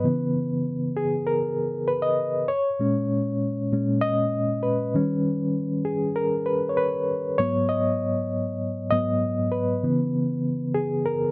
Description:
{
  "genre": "soul",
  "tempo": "98 BPM",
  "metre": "4/4",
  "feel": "straight",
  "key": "G# minor",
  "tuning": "A4 = 440 Hz",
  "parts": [
    { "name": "reed electric piano", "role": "solo", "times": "0.0-11.3 s", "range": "G#2 to D#5", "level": "-22 LUFS", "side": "equal", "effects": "tremolo" }
  ],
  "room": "light reverb",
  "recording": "dark, warm production",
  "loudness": "-22 LUFS",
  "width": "side -23 dB against mid",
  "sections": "0.0-11.3 A section",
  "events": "reed electric piano solo 0.0-11.3",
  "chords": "0.0 C#m7; 2.5 A#m7; 4.9 D#7b13; 7.4 G#m7; 9.8 C#m7"
}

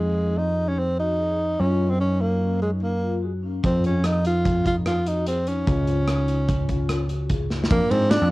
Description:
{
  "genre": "progressive instrumental, band music in an uneven meter",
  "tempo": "147 BPM",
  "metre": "5/4",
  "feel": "straight",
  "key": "F phrygian",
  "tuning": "A4 = 441 Hz",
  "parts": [
    { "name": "breathy tenor saxophone", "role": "melody", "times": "0.0-8.3 s", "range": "Ab3 to F4", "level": "-24 LUFS", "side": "equal", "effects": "none" },
    { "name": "vibraphone with medium mallets", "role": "arpeggios", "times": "0.0-8.2 s", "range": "C4 to Ab4", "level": "-33 LUFS", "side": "left 8 dB", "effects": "cassette tape, analog delay" },
    { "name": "overdriven picked electric bass", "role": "bass", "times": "0.0-8.3 s", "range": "Db2 to Ab2", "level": "-23 LUFS", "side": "equal", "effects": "none" },
    { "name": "modern studio drum kit", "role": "drums", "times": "3.6-8.2 s", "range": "hi-hat, kick drum, ride cymbal, rim click, snare drum", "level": "-26 LUFS", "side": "equal", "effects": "none" },
    { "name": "mellow tine electric piano", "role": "accompaniment", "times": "7.7-8.3 s", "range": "F3 to D5", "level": "-32 LUFS", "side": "right 10 dB", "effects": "none" }
  ],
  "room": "little or no reverb",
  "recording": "home recording on cassette",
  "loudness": "-20 LUFS",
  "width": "side -19 dB against mid",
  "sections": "0.0-7.7 A section",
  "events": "drum fill 7.5",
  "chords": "0.0 Fm7; 1.6 Gbmaj7; 3.6 F7(no3); 5.7 Db; 7.7 Bb/F"
}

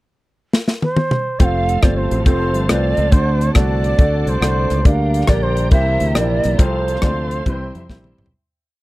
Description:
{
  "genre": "uptempo gospel",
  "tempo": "139 BPM",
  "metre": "4/4",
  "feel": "swing 66% on 8ths",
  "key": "F major",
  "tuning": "A4 = 440 Hz",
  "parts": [
    { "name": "tight funk drum kit", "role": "drums", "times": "0.5-8.3 s", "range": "hi-hat, kick drum, rim click, snare drum, toms", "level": "-15 LUFS", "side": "equal", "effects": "none" },
    { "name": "breathy shakuhachi", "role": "melody", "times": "0.8-8.2 s", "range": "C5 to G5", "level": "-21 LUFS", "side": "right 2 dB", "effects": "none" },
    { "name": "clear baby grand piano", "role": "accompaniment", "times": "1.4-8.3 s", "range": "C3 to D5", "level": "-22 LUFS", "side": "left 1 dB", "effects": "none" },
    { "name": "dark studio string section", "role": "sustained chords", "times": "1.4-8.3 s", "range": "A4 to C6", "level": "-33 LUFS", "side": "equal", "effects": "none" },
    { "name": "tonewheel organ", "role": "sustained chords", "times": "1.4-8.3 s", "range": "D3 to A4", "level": "-28 LUFS", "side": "right 2 dB", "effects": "slow rotary speaker, chorus vibrato" },
    { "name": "modern bright fingered electric bass", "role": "bass", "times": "1.4-8.3 s", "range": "F1 to F2", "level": "-19 LUFS", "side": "equal", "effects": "none" }
  ],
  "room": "little or no reverb",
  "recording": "dry, close 1970s-style studio recording",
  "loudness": "-14 LUFS",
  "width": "side -18 dB against mid",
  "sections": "0.0-1.4 pickup bar; 1.4-8.3 breakdown",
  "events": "drum fill 0.5-1.4, 7.9-8.3; fade-out 6.6-8.3",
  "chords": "0.0 N.C.; 1.4 F; 3.1 D7; 4.9 Gm/D; 5.7 C7; 6.6 F/C; 7.5 C"
}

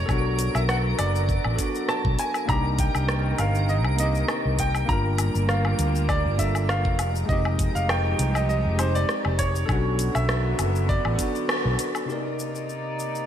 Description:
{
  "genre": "sunset chillout",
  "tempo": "100 BPM",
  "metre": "4/4",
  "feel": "swing 54% on 16ths",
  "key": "C minor",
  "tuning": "A4 = 442 Hz",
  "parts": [
    { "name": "bright baby grand piano", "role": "melody", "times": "0.0-11.8 s", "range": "C5 to Bb5", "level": "-29 LUFS", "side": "right 1 dB", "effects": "ping-pong delay" },
    { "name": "tine electric piano", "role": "accompaniment", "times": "0.0-13.3 s", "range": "C3 to D5", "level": "-31 LUFS", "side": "moving between left 5 dB and right 5 dB", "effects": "auto-pan, ping-pong delay" },
    { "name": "dark studio string section", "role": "sustained chords", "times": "0.0-13.3 s", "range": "C3 to D5", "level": "-33 LUFS", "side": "equal", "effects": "none" },
    { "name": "mellow fretless electric bass", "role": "bass", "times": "0.0-11.8 s", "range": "F1 to D2", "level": "-24 LUFS", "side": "equal", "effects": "lush chorus" },
    { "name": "twinkling granular texture", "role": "texture", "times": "0.0-12.1 s", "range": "Bb4 to D7", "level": "-37 LUFS", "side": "left 1 dB", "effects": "built-in reverb, analog chorus" },
    { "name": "electronic kick drum", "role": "drums", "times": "0.1-11.3 s", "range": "none", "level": "-27 LUFS", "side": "equal", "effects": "none" },
    { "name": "smooth R&B drum kit", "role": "drums", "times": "0.1-13.3 s", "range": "hi-hat, rim click, shaker, woodblock", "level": "-30 LUFS", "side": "left 1 dB", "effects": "gated reverb" }
  ],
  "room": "moderate plate reverb, RT60 2.7 s",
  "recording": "bright 1980s-style digital production",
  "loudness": "-21 LUFS",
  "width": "side -10 dB against mid",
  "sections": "0.0-12.1 A section; 12.1-13.3 B section",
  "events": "kick drops out 11.5-12.1; band accent 11.5",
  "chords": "0.1 Bm7; 2.5 Cm9; 4.9 Gm9; 7.0 Fm9; 9.7 Bm9; 12.1 Cm9"
}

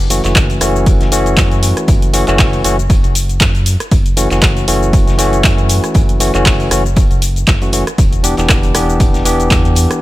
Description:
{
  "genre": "deep house",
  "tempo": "118 BPM",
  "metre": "4/4",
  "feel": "swing 56% on 16ths",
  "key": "F# phrygian",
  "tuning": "A4 = 436 Hz",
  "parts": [
    { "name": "round analog bass", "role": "bass", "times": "0.0-9.9 s", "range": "E1 to F#2", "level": "-16 LUFS", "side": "equal", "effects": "sidechain pumping" },
    { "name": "punchy analog drum machine", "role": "drums", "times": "0.0-10.0 s", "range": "cabasa, handclaps, hi-hat, rim click", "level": "-17 LUFS", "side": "equal", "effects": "none" },
    { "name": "barky tine electric piano", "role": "stabs", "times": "0.1-10.0 s", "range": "E3 to G4", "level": "-16 LUFS", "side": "left 1 dB", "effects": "sidechain pumping, ping-pong delay" },
    { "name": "raw garage drum kit", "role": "drums", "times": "0.1-9.9 s", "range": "hi-hat, snare drum", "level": "-29 LUFS", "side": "left 1 dB", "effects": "none" },
    { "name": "electronic kick drum", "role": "drums", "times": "0.4-9.6 s", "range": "none", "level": "-13 LUFS", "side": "equal", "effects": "none" }
  ],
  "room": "little or no reverb",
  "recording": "none",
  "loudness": "-10 LUFS",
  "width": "side -16 dB against mid",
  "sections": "0.0-10.0 A section",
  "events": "none",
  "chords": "0.0 F#m7; 8.0 Em7"
}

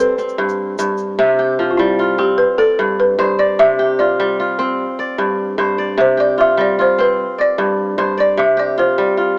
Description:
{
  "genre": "west african traditional, West African string and xylophone music",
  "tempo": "100 BPM (dotted quarters)",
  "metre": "12/8",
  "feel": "straight",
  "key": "C major",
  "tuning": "A4 = 440 Hz",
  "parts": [
    { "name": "balafon", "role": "melody", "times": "0.0-9.2 s", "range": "E4 to E5", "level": "-14 LUFS", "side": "equal", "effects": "cassette tape" },
    { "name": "kora", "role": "arpeggios", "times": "0.0-9.4 s", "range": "G2 to D5", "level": "-15 LUFS", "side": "equal", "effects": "cassette tape" },
    { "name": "egg shaker", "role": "percussion", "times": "0.2-1.0 s", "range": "none", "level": "-32 LUFS", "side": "right 1 dB", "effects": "none" }
  ],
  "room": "light reverb, small room ambience",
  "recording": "home recording on cassette, small speaker sound",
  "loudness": "-13 LUFS",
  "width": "side -27 dB against mid",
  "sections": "0.0-1.2 A section; 1.2-9.4 B section",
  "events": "balafon solo 1.2-9.4",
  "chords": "0.0 G; 1.2 C; 2.4 G; 3.6 C; 4.8 G5; 6.0 C5; 7.2 G5; 8.4 C5"
}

